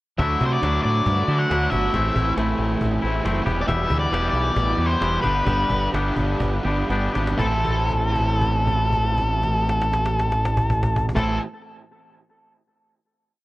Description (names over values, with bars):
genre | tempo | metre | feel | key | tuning
indie rock | 117-138 BPM | 4/4 | straight | A dorian | A4 = 438 Hz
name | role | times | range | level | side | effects
octave-fuzz lead guitar | melody | 0.2-11.4 s | A4 to F#5 | -24 LUFS | left 1 dB | distortion, plate reverb
raw garage guitar | riff | 0.2-11.4 s | G2 to F#4 | -27 LUFS | right 3 dB | overdrive, analog chorus
twangy electric guitar | riff | 0.2-11.4 s | E2 to A4 | -27 LUFS | left 3 dB | none
growling fingered electric bass | bass | 0.2-11.4 s | E1 to D3 | -24 LUFS | equal | overdrive
cajon | drums | 0.2-11.3 s | none | -28 LUFS | equal | none
room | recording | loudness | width
light reverb | worn, warbling old tape, cassette tape, warbly pitch drift | -19 LUFS | side -18 dB against mid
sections
0.2-7.4 pre-chorus; 7.4-11.5 final chord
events
slowing down 3.7-7.4; drum fill 6.9-7.4; held note 7.4-11.2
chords
0.2 Dadd9; 1.9 Am; 3.5 Em; 5.2 G; 7.4 Am